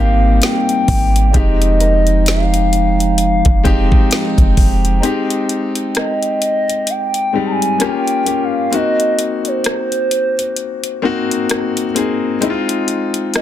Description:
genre	contemporary R&B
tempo	65 BPM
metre	4/4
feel	swing 58% on 16ths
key	unclear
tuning	A4 = 440 Hz
part	gliding portamento lead	melody	0.0-13.4 s	C5 to Bb5	-18 LUFS	equal	chorus, ping-pong delay
part	clear grand piano	accompaniment	0.0-13.4 s	G3 to Ab4	-18 LUFS	left 3 dB	none
part	chamber organ, stopped flute	sustained chords	0.0-5.0 s	F3 to Eb4	-21 LUFS	right 4 dB	none
part	clean 808-style bass	bass	0.0-5.0 s	F1 to Ab1	-15 LUFS	equal	none
part	soft round pluck	texture	0.0-3.3 s	Bb4	-36 LUFS	left 2 dB	none
part	smooth R&B drum kit	drums	0.4-13.4 s	hi-hat, kick drum, rim click, snare drum	-16 LUFS	equal	none
room	little or no reverb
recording	dense, heavily limited modern master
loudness	-13 LUFS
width	side -12 dB against mid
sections	0.0-5.0 A section; 5.0-13.4 B section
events	break 5.0-13.4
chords	0.0 Abmaj9; 1.3 Fm7; 5.0 Abmaj7; 7.8 Bbm6; 8.7 Ab7; 12.4 Ab6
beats	0.42 | 1.34 2.27 3.19 4.11 | 5.04 5.96 6.88 7.80 | 8.73 9.65 10.57 11.50 | 12.42 13.34

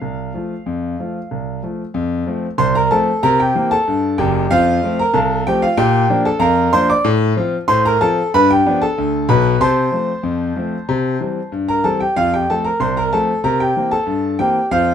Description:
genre	ragtime piano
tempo	94 BPM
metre	2/4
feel	straight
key	F major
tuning	A4 = 436 Hz
part	clear concert grand piano	solo	0.0-14.9 s	Gb1 to D6	-14 LUFS	equal	none
room	light reverb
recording	minimal, uncompressed stereo recording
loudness	-14 LUFS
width	side -8 dB against mid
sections	0.0-2.0 A section; 2.0-14.9 B section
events	none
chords	0.0 F; 3.2 C7; 4.5 F; 5.8 Bb; 7.1 F/A; 8.3 G7; 9.6 F/C; 10.9 C; 12.2 F; 13.4 C7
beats	0.02 | 0.67 1.31 | 1.96 2.60 | 3.23 3.87 | 4.51 5.15 | 5.78 6.42 | 7.06 7.69 | 8.33 8.96 | 9.60 10.24 | 10.88 11.52 | 12.16 12.80 | 13.44 14.08 | 14.72

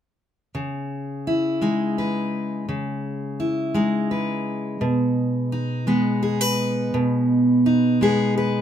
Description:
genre	folk, solo fingerstyle acoustic guitar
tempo	56 BPM (dotted quarters)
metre	6/8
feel	straight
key	unclear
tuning	A4 = 440 Hz
part	fingerpicked steel-string acoustic guitar	solo	0.5-8.6 s	B2 to B4	-20 LUFS	equal	none
room	light reverb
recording	minimal, uncompressed stereo recording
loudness	-20 LUFS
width	side -9 dB against mid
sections	0.6-8.6 A section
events	none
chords	0.6 C#madd9; 4.8 G#m/B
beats	| 0.55 1.62 | 2.69 3.75 | 4.81 5.88 | 6.94 8.01

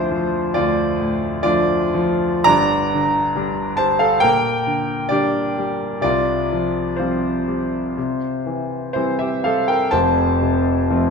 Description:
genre	classical, romantic nocturne for solo piano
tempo	56-70 BPM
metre	4/4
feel	rubato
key	unclear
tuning	A4 = 439 Hz
part	clear concert grand piano	solo	0.0-11.1 s	F1 to Bb5	-17 LUFS	equal	none
room	wet recital hall reverb, RT60 1.4 s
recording	minimal, uncompressed stereo recording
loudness	-17 LUFS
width	side -5 dB against mid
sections	0.0-11.1 A section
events	none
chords	0.0 Dm; 2.5 Gm; 4.2 Gm/Bb; 6.0 Csus4; 8.0 C; 9.9 F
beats	0.58 1.46 | 2.47 3.37 4.24 5.12 | 6.04 6.99 7.96 8.95 | 9.93 10.90

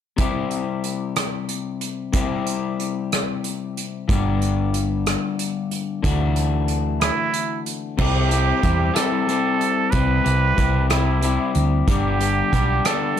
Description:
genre	indie rock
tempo	62 BPM (dotted quarters)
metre	6/8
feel	straight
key	unclear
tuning	A4 = 439 Hz
part	electric guitar through a small old amp	riff	0.2-13.2 s	G2 to G4	-24 LUFS	left 7 dB	none
part	unplugged drum kit	drums	0.2-13.2 s	crash cymbal, hi-hat, kick drum, rim click	-24 LUFS	right 2 dB	none
part	hollow-body short-scale fingered electric bass	bass	4.1-12.8 s	G1 to E2	-21 LUFS	right 1 dB	none
part	trumpet with straight mute	melody	7.0-13.2 s	E4 to B4	-23 LUFS	right 6 dB	slapback echo
room	little or no reverb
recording	dark, warm production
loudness	-19 LUFS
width	side -9 dB against mid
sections	0.2-8.0 A section; 8.0-13.2 B section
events	none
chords	0.2 C; 4.1 G; 6.0 Dadd9; 8.0 C; 11.9 G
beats	| 0.18 1.16 | 2.13 3.11 | 4.08 5.06 | 6.04 7.01 | 7.98 8.96 | 9.93 10.90 | 11.88 12.85

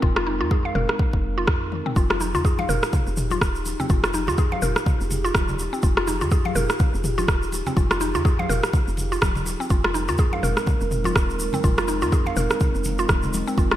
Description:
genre	afro house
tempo	124 BPM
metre	4/4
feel	swing 58% on 16ths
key	F minor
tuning	A4 = 440 Hz
part	dark analog pad	sustained chords	0.0-13.8 s	Ab3 to Bb4	-31 LUFS	right 1 dB	chorus, sidechain pumping
part	mallet-like synth pluck	arpeggios	0.0-13.8 s	C4 to F5	-26 LUFS	equal	chorus, sidechain pumping, digital delay
part	woody FM bass	bass	0.0-13.8 s	Eb1 to F2	-28 LUFS	equal	tube saturation, sidechain pumping
part	deep house drum kit	drums	0.0-13.8 s	rim click, toms	-27 LUFS	equal	none
part	electronic kick drum	drums	0.0-13.7 s	none	-21 LUFS	equal	none
part	congas	percussion	2.0-13.8 s	none	-32 LUFS	left 2 dB	none
part	tube shaker	percussion	2.0-13.7 s	none	-36 LUFS	right 1 dB	none
room	light reverb, digital ambience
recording	bright 1980s-style digital production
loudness	-20 LUFS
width	side -12 dB against mid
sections	0.0-13.8 A section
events	drum fill 1.7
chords	0.0 Abadd9; 2.0 Fm9; 9.7 Abadd9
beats	| 0.03 0.51 0.99 1.48 | 1.96 2.45 2.93 3.42 | 3.90 4.38 4.87 5.35 | 5.83 6.32 6.80 7.29 | 7.77 8.25 8.74 9.22 | 9.71 10.19 10.67 11.16 | 11.64 12.12 12.61 13.09 | 13.58

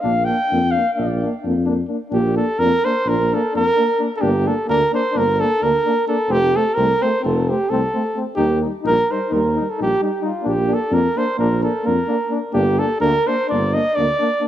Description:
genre	balkan folk, Balkan brass band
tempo	259 BPM (eighths)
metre	9/8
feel	straight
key	Bb major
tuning	A4 = 438 Hz
part	mellow flugelhorn	melody	0.0-14.5 s	F4 to G5	-19 LUFS	right 1 dB	none
part	clear trombone	accompaniment	0.0-14.5 s	C4 to Eb4	-27 LUFS	left 8 dB	none
part	mellow euphonium	accompaniment	0.0-14.5 s	G3 to Bb3	-25 LUFS	right 2 dB	none
part	mellow tuba	bass	0.0-14.1 s	F1 to F2	-20 LUFS	equal	none
room	moderate plate reverb, RT60 2.6 s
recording	heard from further back in the room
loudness	-16 LUFS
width	side -11 dB against mid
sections	0.0-2.1 A section; 2.1-14.5 B section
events	flugelhorn solo 0.0-2.1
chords	0.0 Bb; 4.2 Gm; 6.3 F; 8.4 Eb; 10.5 Bb; 12.5 Gm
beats	| 0.03 0.26 0.49 0.72 0.96 1.19 1.42 1.65 1.89 | 2.12 2.35 2.58 2.81 3.04 3.28 3.51 3.74 3.97 | 4.20 4.43 4.67 4.90 5.13 5.36 5.59 5.83 6.06 | 6.29 6.52 6.75 6.98 7.21 7.45 7.68 7.91 8.14 | 8.37 8.60 8.84 9.07 9.30 9.53 9.76 9.99 10.22 | 10.45 10.69 10.92 11.15 11.38 11.61 11.84 12.07 12.30 | 12.53 12.76 12.99 13.23 13.46 13.69 13.92 14.15 14.38

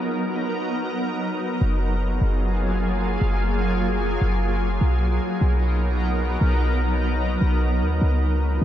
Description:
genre	hip hop, atmospheric cloud-rap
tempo	150 BPM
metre	4/4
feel	half-time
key	F# major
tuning	A4 = 440 Hz
part	shimmering ambient pad	sustained chords	0.0-8.6 s	F#3 to B4	-24 LUFS	equal	chorus, built-in reverb, low-pass filter
part	clean 808-style bass	bass	1.6-8.6 s	F#1 to D#2	-21 LUFS	equal	none
room	light reverb, digital ambience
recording	none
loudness	-20 LUFS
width	side -11 dB against mid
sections	0.0-1.6 A section; 1.6-8.6 B section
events	none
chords	0.0 Bmaj7; 1.6 F#maj9; 4.8 Bmaj7; 8.0 C#7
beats	| 0.01 0.41 0.81 1.22 | 1.61 2.02 2.42 2.81 | 3.21 3.62 4.01 4.42 | 4.82 5.21 5.62 6.01 | 6.42 6.82 7.21 7.62 | 8.02 8.41

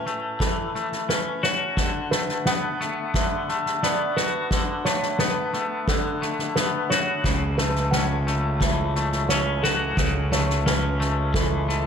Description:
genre	post-rock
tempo	88 BPM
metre	4/4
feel	straight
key	unclear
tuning	A4 = 444 Hz
part	felt-muted upright piano	arpeggios	0.0-11.9 s	A4 to F#5	-30 LUFS	right 5 dB	slapback echo
part	twangy electric guitar	arpeggios	0.0-11.9 s	A2 to F#4	-26 LUFS	left 3 dB	harmonic tremolo, slapback echo
part	soft-mallet drum kit	drums	0.1-11.8 s	kick drum, snare drum	-26 LUFS	equal	none
part	fuzz fingered electric bass	bass	7.2-11.9 s	C#2	-25 LUFS	right 1 dB	overdrive
room	moderate concert hall reverb, RT60 1.9 s, studio ambience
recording	none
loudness	-21 LUFS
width	side -7 dB against mid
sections	0.0-11.9 A section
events	none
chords	0.0 A6; 1.8 D6; 7.2 F#m7/C#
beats	0.41 1.09 | 1.78 2.46 3.15 3.83 | 4.52 5.20 5.88 6.57 | 7.25 7.93 8.62 9.30 | 9.98 10.67 11.35

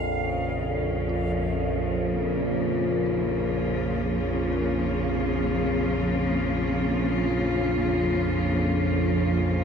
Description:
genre	dark ambient drone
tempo	61 BPM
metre	4/4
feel	straight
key	Bb minor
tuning	A4 = 441 Hz
part	overtone-sweeping drone	drone	0.0-9.6 s	Bb1 to F2	-25 LUFS	equal	chorus, built-in reverb
part	bright studio cello section	sustained chords	0.2-9.6 s	Db3 to F4	-28 LUFS	equal	none
part	dark detuned synth bell	arpeggios	1.1-9.6 s	Eb4 to Bb4	-45 LUFS	right 1 dB	none
room	wet huge ambient reverb, RT60 8.1 s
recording	dark, warm production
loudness	-23 LUFS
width	side -6 dB against mid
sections	0.1-9.6 A section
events	none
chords	0.1 Bbm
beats	| 0.11 1.09 2.08 3.06 | 4.04 5.03 6.01 6.99 | 7.98 8.96

